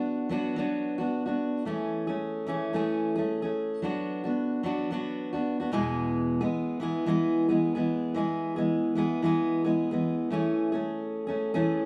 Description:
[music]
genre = pop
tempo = 111 BPM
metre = 4/4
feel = swing 55% on 16ths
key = A major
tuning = A4 = 440 Hz
[part]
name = fingerpicked steel-string acoustic guitar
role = solo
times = 0.0-11.9 s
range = E2 to G#4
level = -29 LUFS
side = equal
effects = none
[sound]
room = moderate small room reverb, RT60 0.5 s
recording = band playing live in one room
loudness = -29 LUFS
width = mono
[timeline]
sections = 0.0-10.3 A section; 10.3-11.9 B section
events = none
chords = 0.0 Bm; 1.7 Amaj7; 3.8 Bm; 5.7 E; 10.3 Amaj7

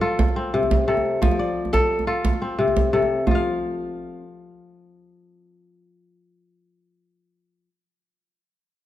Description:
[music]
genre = west african traditional, West African string and xylophone music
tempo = 117 BPM (dotted quarters)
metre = 12/8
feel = straight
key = F major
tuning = A4 = 443 Hz
[part]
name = kora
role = arpeggios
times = 0.0-7.8 s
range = C3 to F5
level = -21 LUFS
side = left 2 dB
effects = none
[part]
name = djembe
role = percussion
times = 0.1-3.4 s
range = none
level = -23 LUFS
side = right 2 dB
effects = none
[sound]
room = moderate recital hall reverb, RT60 1.8 s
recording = dark, warm production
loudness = -19 LUFS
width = side -13 dB against mid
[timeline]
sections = 0.0-3.3 A section; 3.3-7.4 B section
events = none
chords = 0.2 Am/C; 1.2 F; 2.2 Am/C; 3.3 F

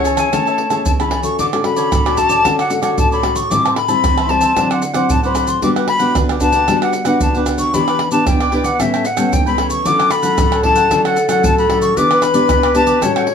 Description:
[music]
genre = samba and choro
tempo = 113 BPM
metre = 4/4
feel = straight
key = D major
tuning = A4 = 440 Hz
[part]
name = warm clarinet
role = second line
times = 0.0-1.1, 9.9-13.3 s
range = A4 to C#5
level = -18 LUFS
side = left 3 dB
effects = none
[part]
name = cavaquinho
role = accompaniment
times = 0.0-13.3 s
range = D4 to A5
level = -22 LUFS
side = right 6 dB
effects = none
[part]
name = nylon-string guitar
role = accompaniment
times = 0.0-13.3 s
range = A2 to A4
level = -19 LUFS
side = left 2 dB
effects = none
[part]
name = maracas, pandeiro, tamborim and surdo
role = percussion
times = 0.0-13.3 s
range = none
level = -19 LUFS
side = right 2 dB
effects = none
[part]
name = silver concert flute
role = melody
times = 0.2-13.2 s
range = E5 to D6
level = -16 LUFS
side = left 3 dB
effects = none
[sound]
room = moderate studio reverb, RT60 0.6 s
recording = small room ambience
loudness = -12 LUFS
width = side -7 dB against mid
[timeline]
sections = 0.0-1.4 A section; 1.4-13.3 B section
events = none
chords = 0.0 Amaj7; 1.4 Dmaj7; 3.5 Am7; 4.6 D9; 5.6 Gmaj7; 7.7 Em7; 8.8 A9; 9.9 Dmaj9; 12.0 Em7

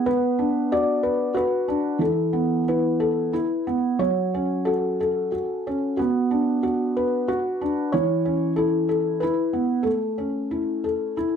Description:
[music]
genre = children's music, lullaby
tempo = 92 BPM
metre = 3/4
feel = rubato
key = A major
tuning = A4 = 438 Hz
[part]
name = felt-muted upright piano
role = solo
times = 0.0-11.4 s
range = E3 to D5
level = -21 LUFS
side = equal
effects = slapback echo
[sound]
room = moderate studio reverb, RT60 0.6 s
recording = none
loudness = -21 LUFS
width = side -7 dB against mid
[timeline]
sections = 0.0-11.4 A section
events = none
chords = 0.1 Bm; 2.0 Esus4; 3.3 E5; 4.0 F#m; 6.0 Bm; 7.9 A/E; 9.2 E5; 9.9 A

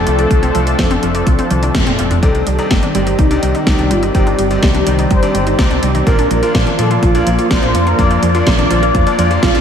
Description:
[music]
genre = italo disco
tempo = 125 BPM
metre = 4/4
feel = straight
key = unclear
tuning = A4 = 435 Hz
[part]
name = mellow synth brass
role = melody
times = 0.0-9.6 s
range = Eb4 to D5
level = -18 LUFS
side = equal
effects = chorus, tremolo, ping-pong delay
[part]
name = lush unison pad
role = sustained chords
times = 0.0-9.6 s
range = Eb3 to D5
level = -19 LUFS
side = equal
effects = chorus
[part]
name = fingered electric bass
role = bass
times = 0.0-9.6 s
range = F1 to Bb2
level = -18 LUFS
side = equal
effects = none
[part]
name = analog pluck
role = arpeggios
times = 0.1-9.6 s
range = F3 to F4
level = -21 LUFS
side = right 1 dB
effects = chorus, ping-pong delay
[part]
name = house drum kit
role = drums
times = 0.1-9.6 s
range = hi-hat, snare drum, toms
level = -20 LUFS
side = equal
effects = none
[part]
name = electronic kick drum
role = drums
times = 0.3-9.5 s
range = none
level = -15 LUFS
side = equal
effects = none
[part]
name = bright electric grand piano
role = stabs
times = 2.2-9.6 s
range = Bb2 to D5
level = -21 LUFS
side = left 1 dB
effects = ping-pong delay
[sound]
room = wet lush hall reverb, RT60 1.9 s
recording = dreamy mix soaked in reverb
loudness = -11 LUFS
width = side -8 dB against mid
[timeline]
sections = 0.0-2.2 A section; 2.2-9.6 B section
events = drum fill 1.5-2.2; band accent 1.7; filter sweep on analog synth pad 2.2-9.6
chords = 0.0 F6; 2.2 Cmadd9; 6.1 Bb

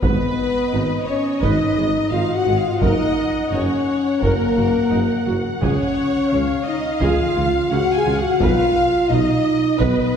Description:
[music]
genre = cinematic, epic orchestral film score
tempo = 86 BPM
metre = 4/4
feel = straight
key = G# dorian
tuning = A4 = 440 Hz
[part]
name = rich studio violin section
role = melody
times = 0.0-10.2 s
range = A#4 to G#5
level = -28 LUFS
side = left 2 dB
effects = none
[part]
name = clear symphonic violin section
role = second line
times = 0.0-10.2 s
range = A#4 to G#5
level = -27 LUFS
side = left 3 dB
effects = none
[part]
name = rich symphonic viola section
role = accompaniment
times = 0.0-10.2 s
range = C#4 to F#5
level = -27 LUFS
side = right 1 dB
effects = none
[part]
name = warm French horn section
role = sustained chords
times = 0.0-10.2 s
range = A#3 to G#4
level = -19 LUFS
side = left 1 dB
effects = none
[part]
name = mellow tuba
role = bass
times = 0.0-9.9 s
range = F#1 to C#2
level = -27 LUFS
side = right 3 dB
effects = none
[part]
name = warm symphonic cello section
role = bass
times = 0.0-9.9 s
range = F#2 to C#3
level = -28 LUFS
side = right 2 dB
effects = none
[part]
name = warm symphonic double bass section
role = bass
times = 0.0-9.9 s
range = F#1 to C#2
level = -27 LUFS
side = right 2 dB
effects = none
[part]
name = taiko ensemble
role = drums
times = 0.0-10.2 s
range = none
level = -26 LUFS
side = equal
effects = none
[sound]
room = wet scoring stage reverb, RT60 1.8 s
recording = heard from further back in the room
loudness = -16 LUFS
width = side -7 dB against mid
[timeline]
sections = 0.0-10.2 A section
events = none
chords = 0.0 G#m; 2.8 F#6; 5.6 C#; 8.4 B

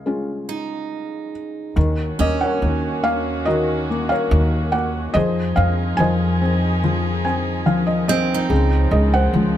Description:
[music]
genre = acoustic folk-pop ballad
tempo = 71 BPM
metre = 4/4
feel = straight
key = Eb dorian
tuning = A4 = 440 Hz
[part]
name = felt-muted upright piano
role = melody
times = 0.0-9.6 s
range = Db2 to Ab5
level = -20 LUFS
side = left 1 dB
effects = none
[part]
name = picked steel-string acoustic guitar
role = arpeggios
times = 0.5-9.1 s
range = C4 to Eb4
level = -25 LUFS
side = right 7 dB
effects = none
[part]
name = warm chamber string section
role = sustained chords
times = 1.8-9.6 s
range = Db3 to Ab4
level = -27 LUFS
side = equal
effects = none
[part]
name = upright bass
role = bass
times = 1.8-9.6 s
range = Db2 to F2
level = -21 LUFS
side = equal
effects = none
[sound]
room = little or no reverb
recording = close, detailed microphones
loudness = -17 LUFS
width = side -11 dB against mid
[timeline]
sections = 0.0-1.8 A section; 1.8-9.6 B section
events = felt piano fill 6.8-8.5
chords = 0.0 Db; 1.8 Ebm7; 5.2 Fm7; 8.5 Dbmaj7

